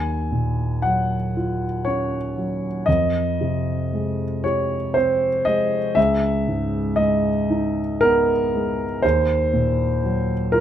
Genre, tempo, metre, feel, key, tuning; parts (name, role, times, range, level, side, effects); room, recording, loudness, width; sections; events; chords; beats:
classical, impressionist solo piano; 59 BPM; 3/4; rubato; Eb dorian; A4 = 440 Hz
warm grand piano; solo; 0.0-10.6 s; Db2 to Ab5; -19 LUFS; equal
light reverb; close, detailed microphones; -19 LUFS; side -10 dB against mid
0.0-10.6 A section
0.0 Ebm9; 2.9 Fm9; 6.0 Dbm9; 9.0 Ebm
0.82 1.85 | 2.87 3.92 4.95 | 5.97 6.99 8.02 | 9.03 10.03